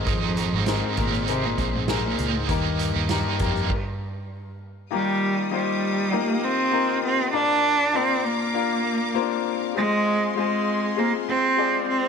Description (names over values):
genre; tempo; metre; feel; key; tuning
piano-driven pop; 99 BPM; 4/4; straight; unclear; A4 = 442 Hz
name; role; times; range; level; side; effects
rich cello; melody; 0.0-12.1 s; F2 to D4; -23 LUFS; right 2 dB; none
clear baby grand piano; accompaniment; 0.0-12.1 s; Ab2 to F5; -27 LUFS; left 14 dB; none
cranked stack guitar; riff; 0.0-3.7 s; Eb3 to Bb4; -29 LUFS; right 15 dB; overdrive, tremolo
vintage muted fingered electric bass; bass; 0.0-3.7 s; Ab1 to F2; -28 LUFS; equal; none
soft-mallet drum kit; drums; 0.1-3.8 s; crash cymbal, hi-hat, kick drum, snare drum; -29 LUFS; right 2 dB; none
bright studio string section; sustained chords; 4.9-12.1 s; G4 to Eb6; -34 LUFS; left 4 dB; none
room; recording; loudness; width
moderate plate reverb, RT60 2.8 s; 1960s-style stereo with parts hard left and right; -21 LUFS; side -6 dB against mid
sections
0.0-4.9 A section; 4.9-12.1 B section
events
stop 3.7-4.9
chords
0.0 Abadd9; 2.5 Eb; 4.9 Ebadd9; 7.3 Bb; 9.8 Fm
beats
| 0.07 0.67 1.28 1.89 | 2.49 3.10 3.70 4.31 | 4.91 5.52 6.12 6.73 | 7.33 7.94 8.54 9.15 | 9.76 10.36 10.97 11.57